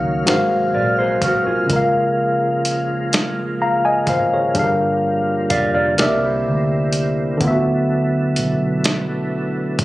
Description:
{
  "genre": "slow six-eight R&B",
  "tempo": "42 BPM (dotted quarters)",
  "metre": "6/8",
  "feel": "straight",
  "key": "unclear",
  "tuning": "A4 = 440 Hz",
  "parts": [
    { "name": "tine electric piano", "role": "accompaniment", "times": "0.0-9.8 s", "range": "C3 to A#5", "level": "-19 LUFS", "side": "left 1 dB", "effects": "none" },
    { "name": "tonewheel organ", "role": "sustained chords", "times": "0.0-9.8 s", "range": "B#2 to E#5", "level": "-24 LUFS", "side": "right 1 dB", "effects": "chorus vibrato, slow rotary speaker" },
    { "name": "vintage muted fingered electric bass", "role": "bass", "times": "0.0-9.8 s", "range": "F1 to D2", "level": "-25 LUFS", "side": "right 1 dB", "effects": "none" },
    { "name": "dusty soul sampler-style drum kit", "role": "drums", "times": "0.3-9.8 s", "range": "hi-hat, kick drum, snare drum", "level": "-20 LUFS", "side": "equal", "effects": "none" },
    { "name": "mellow electric guitar", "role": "second line", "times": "0.7-7.4 s", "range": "E4 to F5", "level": "-20 LUFS", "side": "right 1 dB", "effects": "none" }
  ],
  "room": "light reverb",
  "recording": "recorded on a phone in the room, club reverb",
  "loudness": "-16 LUFS",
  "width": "side -17 dB against mid",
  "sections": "0.0-9.8 A section",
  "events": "none",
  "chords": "0.3 G#13; 1.7 C#6; 4.6 Gm7; 6.0 C9; 7.4 D69"
}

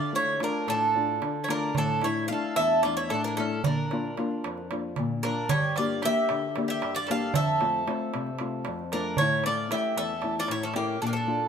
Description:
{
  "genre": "greek folk, Greek bouzouki band",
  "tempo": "227 BPM (eighths)",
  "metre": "7/8",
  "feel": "straight",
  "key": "A phrygian dominant",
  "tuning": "A4 = 439 Hz",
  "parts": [
    { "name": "Greek bouzouki", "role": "melody", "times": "0.0-11.5 s", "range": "G4 to F5", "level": "-28 LUFS", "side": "right 1 dB", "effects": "none" },
    { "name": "bowl-back mandolin", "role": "second line", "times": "0.0-11.5 s", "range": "Bb3 to A4", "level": "-33 LUFS", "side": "right 2 dB", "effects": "none" },
    { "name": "nylon-string guitar", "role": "accompaniment", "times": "0.0-11.5 s", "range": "E2 to G4", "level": "-30 LUFS", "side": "left 5 dB", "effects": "none" },
    { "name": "darbuka", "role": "percussion", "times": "0.4-10.9 s", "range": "none", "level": "-32 LUFS", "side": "right 4 dB", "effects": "none" }
  ],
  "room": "moderate plate reverb, RT60 2.4 s",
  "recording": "minimal, uncompressed stereo recording",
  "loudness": "-25 LUFS",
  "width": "side -7 dB against mid",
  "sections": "0.0-11.5 A section",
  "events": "speeding up 0.0-11.5",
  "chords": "0.0 Dm; 1.8 Asus4; 3.6 Bb; 5.5 Gm; 7.3 F; 9.2 A"
}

